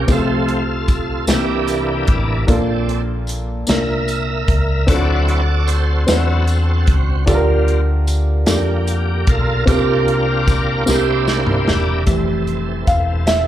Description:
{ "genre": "slow gospel", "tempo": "50 BPM (dotted quarters)", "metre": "6/8", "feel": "straight", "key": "F major", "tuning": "A4 = 437 Hz", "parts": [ { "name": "warm upright piano", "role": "accompaniment", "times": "0.0-13.5 s", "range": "Bb2 to F5", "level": "-20 LUFS", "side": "equal", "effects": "slapback echo" }, { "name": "bright tonewheel organ", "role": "sustained chords", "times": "0.0-13.5 s", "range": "E3 to E5", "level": "-21 LUFS", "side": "right 2 dB", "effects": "slow rotary speaker, overdrive, chorus vibrato" }, { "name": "fingered electric bass", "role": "bass", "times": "0.0-13.5 s", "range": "E1 to F2", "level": "-18 LUFS", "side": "equal", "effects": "none" }, { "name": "warm soul drum kit", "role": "drums", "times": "0.1-13.5 s", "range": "hi-hat, kick drum, snare drum, toms", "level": "-18 LUFS", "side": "equal", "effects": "none" }, { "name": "tambourine", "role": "percussion", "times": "0.1-13.5 s", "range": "none", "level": "-31 LUFS", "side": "left 3 dB", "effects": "none" } ], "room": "small room ambience", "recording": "live gig heard through the venue's PA, club reverb", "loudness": "-14 LUFS", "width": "side -12 dB against mid", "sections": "0.0-12.1 A section; 12.1-13.5 B section", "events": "tonewheel organ solo 0.0-12.1; drum fill 10.9-12.1; upright piano solo 12.1-13.5", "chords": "0.1 F/C; 1.3 C7; 2.5 Bbmaj7; 4.9 D7; 7.3 Gm7/D; 9.7 C7sus4; 10.9 C7; 12.1 Fmaj7", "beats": "| 0.09 1.29 | 2.49 3.68 | 4.88 6.08 | 7.28 8.48 | 9.68 10.88 | 12.08 13.28" }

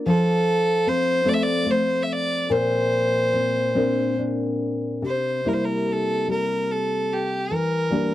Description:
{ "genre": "celtic folk, Celtic slow air", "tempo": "48 BPM (dotted quarters)", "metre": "6/8", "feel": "uneven beats, rubato", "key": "C mixolydian", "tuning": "A4 = 438 Hz", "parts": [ { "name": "nylon-string guitar", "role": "accompaniment", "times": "0.0-8.1 s", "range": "Bb2 to Bb4", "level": "-23 LUFS", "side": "left 1 dB", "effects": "none" }, { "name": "rich fiddle", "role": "melody", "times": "0.1-8.1 s", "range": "G4 to E5", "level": "-23 LUFS", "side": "equal", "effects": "none" } ], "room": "light reverb", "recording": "dry, close 1970s-style studio recording", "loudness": "-20 LUFS", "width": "side -14 dB against mid", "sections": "0.0-5.0 A section; 5.0-8.1 B section", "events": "none", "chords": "0.1 F; 2.5 Bbadd9; 5.0 C7; 7.5 Em7b5", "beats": "| 0.05 1.26 | 2.48 3.74 | 5.03 6.28 | 7.51" }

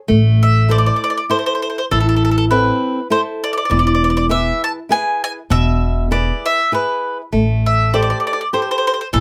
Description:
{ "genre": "italian folk, Italian serenade", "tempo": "100 BPM", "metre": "3/4", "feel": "swing 54% on 8ths", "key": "A minor", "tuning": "A4 = 440 Hz", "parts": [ { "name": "flamenco guitar", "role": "accompaniment", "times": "0.1-9.2 s", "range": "B2 to C5", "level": "-22 LUFS", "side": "equal", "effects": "none" }, { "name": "upright bass", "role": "bass", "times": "0.1-9.2 s", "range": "E1 to A1", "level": "-18 LUFS", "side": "equal", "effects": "none" }, { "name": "bowl-back mandolin", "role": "melody", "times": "0.4-9.2 s", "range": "A4 to A5", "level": "-20 LUFS", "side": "equal", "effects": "none" } ], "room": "light reverb", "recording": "close, detailed microphones", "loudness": "-16 LUFS", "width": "mono", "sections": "0.1-9.2 A section", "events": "none", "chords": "0.1 Am; 3.7 E; 7.3 Am7", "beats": "| 0.10 0.70 1.31 | 1.91 2.51 3.11 | 3.71 4.31 4.91 | 5.51 6.11 6.72 | 7.33 7.93 8.54 | 9.14" }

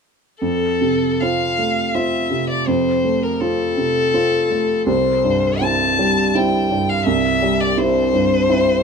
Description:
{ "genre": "neoclassical piano and strings", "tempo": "82 BPM", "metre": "3/4", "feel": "rubato", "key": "F major", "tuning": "A4 = 439 Hz", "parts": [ { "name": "clear violin", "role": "melody", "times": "0.4-8.8 s", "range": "A4 to A5", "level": "-18 LUFS", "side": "left 3 dB", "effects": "none" }, { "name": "warm upright piano", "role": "accompaniment", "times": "0.4-8.8 s", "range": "C2 to F4", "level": "-18 LUFS", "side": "right 2 dB", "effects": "none" } ], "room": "light reverb", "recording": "minimal, uncompressed stereo recording", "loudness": "-15 LUFS", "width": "side -5 dB against mid", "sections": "0.4-8.8 A section", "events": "none", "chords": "0.4 F; 4.9 C", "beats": "| 0.42 1.21 1.95 | 2.68 3.41 4.15 | 4.88 5.63 6.35 | 7.07 7.78 8.50" }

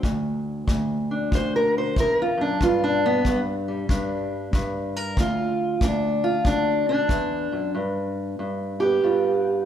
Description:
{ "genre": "acoustic country blues, solo or duo", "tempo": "94 BPM", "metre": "4/4", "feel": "swing 65% on 8ths", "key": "G mixolydian", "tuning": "A4 = 438 Hz", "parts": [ { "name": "fingerpicked steel-string acoustic guitar", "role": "melody", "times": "0.0-9.7 s", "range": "D2 to C5", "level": "-22 LUFS", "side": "equal", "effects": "none" }, { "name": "kick drum", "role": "drums", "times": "0.0-7.3 s", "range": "none", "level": "-25 LUFS", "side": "equal", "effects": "none" } ], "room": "moderate recital hall reverb, RT60 1.4 s", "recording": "recorded in a church or concert hall", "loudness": "-21 LUFS", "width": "side -9 dB against mid", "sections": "0.0-7.7 A section; 7.7-9.7 B section", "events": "steel-string acoustic guitar solo 0.0-7.7", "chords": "0.0 N.C.; 2.6 G5; 5.2 N.C.; 7.7 G7", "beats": "| 0.04 0.68 1.32 1.96 | 2.60 3.25 3.89 4.53 | 5.17 5.81 6.45 7.10 | 7.74 8.38 9.03" }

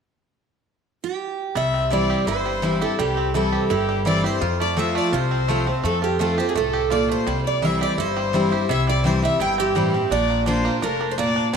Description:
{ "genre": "bluegrass", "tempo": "168 BPM", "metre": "4/4", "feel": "straight", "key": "C mixolydian", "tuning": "A4 = 437 Hz", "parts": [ { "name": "picked steel-string acoustic guitar", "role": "melody", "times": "1.0-11.6 s", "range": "G4 to G5", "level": "-25 LUFS", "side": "right 10 dB", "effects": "none" }, { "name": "bluegrass banjo", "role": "melody", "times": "1.6-11.6 s", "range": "G3 to G4", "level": "-28 LUFS", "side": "right 8 dB", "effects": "none" }, { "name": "rich fiddle", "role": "second line", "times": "1.6-11.6 s", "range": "G4 to G5", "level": "-26 LUFS", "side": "left 12 dB", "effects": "none" }, { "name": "picked steel-string acoustic guitar", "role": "accompaniment", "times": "1.6-11.6 s", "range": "F2 to F4", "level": "-23 LUFS", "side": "left 2 dB", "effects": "none" }, { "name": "upright bass", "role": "bass", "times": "1.6-11.6 s", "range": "F1 to F2", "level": "-28 LUFS", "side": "left 1 dB", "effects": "none" } ], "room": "moderate plate reverb, RT60 2.9 s", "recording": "1960s-style stereo with parts hard left and right", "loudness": "-19 LUFS", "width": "side -6 dB against mid", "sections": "0.1-1.6 A section; 1.6-11.6 B section", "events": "none", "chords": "0.1 N.C.; 1.6 C; 4.4 F; 7.3 C; 10.1 Bb", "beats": "| 0.12 0.48 0.84 1.20 | 1.55 1.91 2.27 2.63 | 2.98 3.34 3.70 4.06 | 4.41 4.77 5.13 5.48 | 5.84 6.20 6.55 6.91 | 7.26 7.62 7.98 8.33 | 8.69 9.04 9.40 9.76 | 10.11 10.47 10.82 11.18 | 11.53" }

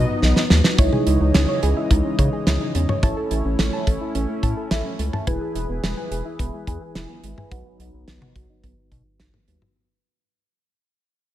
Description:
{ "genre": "synth-pop", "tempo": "107 BPM", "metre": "4/4", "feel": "straight", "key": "unclear", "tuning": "A4 = 440 Hz", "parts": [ { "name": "analog synth brass", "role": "melody", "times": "0.0-0.5 s", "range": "D#5", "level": "-29 LUFS", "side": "left 2 dB", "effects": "chorus, digital delay" }, { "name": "FM electric piano with soft pad layer", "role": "accompaniment", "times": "0.0-9.8 s", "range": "B3 to E5", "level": "-29 LUFS", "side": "right 1 dB", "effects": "chorus, phaser, low-pass filter" }, { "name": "chorused pulse-width pad", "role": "sustained chords", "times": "0.0-9.7 s", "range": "C#3 to D#5", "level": "-28 LUFS", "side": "left 1 dB", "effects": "low-pass filter" }, { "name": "round analog bass", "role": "bass", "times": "0.0-9.6 s", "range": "E1 to C#3", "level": "-21 LUFS", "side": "equal", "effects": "none" }, { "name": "damped 70s drum kit", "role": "drums", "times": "0.2-9.7 s", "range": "hi-hat, kick drum, snare drum, toms", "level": "-21 LUFS", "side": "equal", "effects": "gated reverb" }, { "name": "soft round pluck", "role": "arpeggios", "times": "0.8-9.7 s", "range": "F#3 to A5", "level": "-29 LUFS", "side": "right 2 dB", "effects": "chorus, low-pass filter, digital delay" } ], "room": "light reverb, studio reverb", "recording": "faint mains hum", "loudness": "-18 LUFS", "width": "side -13 dB against mid", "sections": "0.8-9.8 A section", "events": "drum fill 0.2-0.8; fade-out 0.8-9.8; filter sweep 0.8-9.8", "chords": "0.0 B; 0.8 C#madd9; 3.0 A; 5.3 E; 7.5 B", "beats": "0.22 | 0.79 1.35 1.91 2.47 | 3.03 3.59 4.15 4.71 | 5.27 5.83 6.39 6.95 | 7.51 8.07 8.64 9.20" }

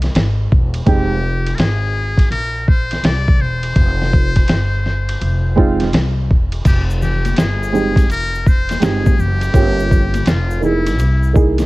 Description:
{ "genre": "hip hop, jazz-hop", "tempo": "83 BPM", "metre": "4/4", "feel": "swing 66% on 16ths", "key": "unclear", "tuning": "A4 = 436 Hz", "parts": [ { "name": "upright bass", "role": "bass", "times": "0.0-11.7 s", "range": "E1 to C2", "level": "-18 LUFS", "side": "equal", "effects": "none" }, { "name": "lo-fi sampler-style drum kit", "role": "drums", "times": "0.0-11.7 s", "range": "crash cymbal, hi-hat, kick drum, ride cymbal, snare drum", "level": "-15 LUFS", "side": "equal", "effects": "none" }, { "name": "trumpet with metal mute", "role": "melody", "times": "0.9-11.3 s", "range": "E4 to D5", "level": "-23 LUFS", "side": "left 2 dB", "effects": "none" }, { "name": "warm upright piano", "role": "accompaniment", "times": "0.9-1.2, 5.6-11.7 s", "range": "Ab3 to Ab4", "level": "-18 LUFS", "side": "right 3 dB", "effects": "none" }, { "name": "egg shaker and congas", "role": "percussion", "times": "6.7-11.7 s", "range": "none", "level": "-28 LUFS", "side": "left 5 dB", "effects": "none" } ], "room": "small room ambience", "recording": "cassette tape", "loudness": "-13 LUFS", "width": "side -20 dB against mid", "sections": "0.0-6.6 A section; 6.6-11.7 A section", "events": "upright piano fill 11.3-11.7", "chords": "0.0 Caug; 0.9 Fm; 6.6 Fm7; 9.5 Gm7b5; 11.0 C7alt", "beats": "0.14 | 0.87 1.59 2.31 3.04 | 3.76 4.48 5.20 5.93 | 6.65 7.37 8.10 8.82 | 9.54 10.26 10.99" }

